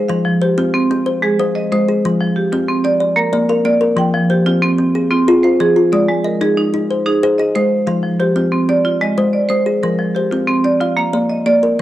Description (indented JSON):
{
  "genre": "southern african traditional",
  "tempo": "123 BPM (dotted quarters)",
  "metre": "12/8",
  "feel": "straight",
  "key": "F dorian",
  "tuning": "A4 = 439 Hz",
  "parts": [
    { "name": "kalimba", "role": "arpeggios", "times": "0.0-11.8 s", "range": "F3 to F5", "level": "-16 LUFS", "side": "left 2 dB", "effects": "cassette tape" },
    { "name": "marimba with hard mallets", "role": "arpeggios", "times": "0.0-11.8 s", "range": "F3 to G5", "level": "-15 LUFS", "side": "right 2 dB", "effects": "cassette tape" }
  ],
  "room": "light reverb, small room ambience",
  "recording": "home recording on cassette",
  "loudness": "-13 LUFS",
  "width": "side -14 dB against mid",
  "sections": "0.0-7.9 A section; 7.9-11.8 A section",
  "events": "none",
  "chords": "0.1 Fm; 1.1 Ab; 2.0 Fm; 3.0 Bb; 4.0 Fm; 5.9 Ab; 7.9 F5; 8.8 Ab; 9.8 Fm; 10.8 Bb",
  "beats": "| 0.10 0.58 1.07 1.55 | 2.04 2.52 3.01 3.50 | 3.98 4.47 4.95 5.44 | 5.92 6.41 6.90 7.38 | 7.87 8.36 8.85 9.34 | 9.83 10.31 10.80 11.29 | 11.78"
}